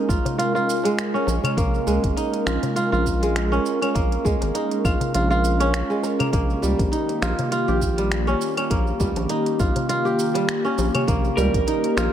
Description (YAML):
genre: organic downtempo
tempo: 101 BPM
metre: 4/4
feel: swing 55% on 16ths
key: Bb dorian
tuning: A4 = 440 Hz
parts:
  - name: airy breathy pad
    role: sustained chords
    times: 0.0-12.1 s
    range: Eb3 to Bb4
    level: -26 LUFS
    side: left 1 dB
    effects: chorus, sidechain pumping
  - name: kora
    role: arpeggios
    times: 0.0-12.1 s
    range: G3 to G4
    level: -23 LUFS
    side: right 2 dB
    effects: low-pass filter, tape echo
  - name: round analog bass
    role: bass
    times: 0.1-12.1 s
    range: Ab1 to Db2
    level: -24 LUFS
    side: equal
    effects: sidechain pumping
  - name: electronic kick drum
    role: drums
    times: 0.1-11.6 s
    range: none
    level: -24 LUFS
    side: equal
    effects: none
  - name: organic electronic drum kit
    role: drums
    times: 0.1-12.1 s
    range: claves, finger snaps, hi-hat, shaker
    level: -30 LUFS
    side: equal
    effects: none
  - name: darbuka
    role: percussion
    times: 0.3-12.1 s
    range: none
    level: -31 LUFS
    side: left 2 dB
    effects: none
  - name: electric slide guitar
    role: melody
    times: 11.4-12.1 s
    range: Bb4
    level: -24 LUFS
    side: right 8 dB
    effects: none
room: light reverb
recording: none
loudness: -19 LUFS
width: side -10 dB against mid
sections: 0.0-12.1 A section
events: none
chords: 0.0 Bbm7; 6.3 Eb/Bb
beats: 0.39 0.98 | 1.58 2.17 2.77 3.36 | 3.95 4.55 5.14 5.74 | 6.33 6.92 7.52 8.11 | 8.71 9.30 9.89 10.49 | 11.08 11.68